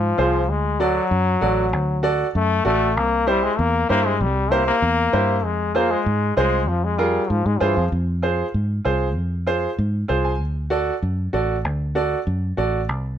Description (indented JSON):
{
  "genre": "latin",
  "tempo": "194 BPM",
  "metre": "4/4",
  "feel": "straight",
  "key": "unclear",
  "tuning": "A4 = 440 Hz",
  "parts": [
    { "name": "brilliant trombone", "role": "second line", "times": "0.0-7.9 s", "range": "E3 to Bb3", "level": "-21 LUFS", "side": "left 4 dB", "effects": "none" },
    { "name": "fingered electric bass", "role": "bass", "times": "0.0-13.2 s", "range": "A1 to Ab2", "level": "-22 LUFS", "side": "equal", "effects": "none" },
    { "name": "clear upright piano", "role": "accompaniment", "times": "0.2-12.8 s", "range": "E4 to Ab5", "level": "-22 LUFS", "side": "right 3 dB", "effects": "none" }
  ],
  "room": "light reverb",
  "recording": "none",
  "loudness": "-18 LUFS",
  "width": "side -10 dB against mid",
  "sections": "0.0-7.9 A section; 7.9-13.2 B section",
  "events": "upright piano fill 9.9-10.4",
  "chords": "0.5 D; 3.0 C7; 5.4 Fm; 10.4 D"
}